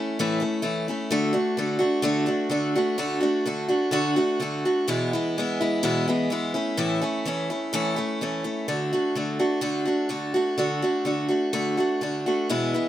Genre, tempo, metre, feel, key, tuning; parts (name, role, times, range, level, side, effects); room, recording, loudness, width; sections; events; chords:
rock; 127 BPM; 4/4; straight; A4 = 440 Hz
picked steel-string acoustic guitar; solo; 0.0-12.9 s; E2 to F#4; -22 LUFS; equal
light reverb; -22 LUFS; side -12 dB against mid
0.0-8.7 A section; 8.7-12.9 B section
0.0 A; 1.1 D; 4.9 E; 6.5 A; 8.7 D